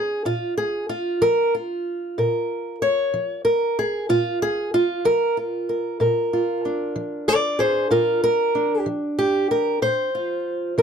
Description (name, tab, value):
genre	acoustic country blues, solo or duo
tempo	63 BPM (dotted quarters)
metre	12/8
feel	straight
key	Bb mixolydian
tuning	A4 = 440 Hz
part	fingerpicked old ladder-braced acoustic guitar	solo	0.0-10.8 s	Bb2 to D5	-20 LUFS	equal	none
room	little or no reverb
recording	close, detailed microphones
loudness	-20 LUFS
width	side -7 dB against mid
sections	0.0-10.8 A section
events	steel-string acoustic guitar solo 0.0-10.8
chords	0.0 Bb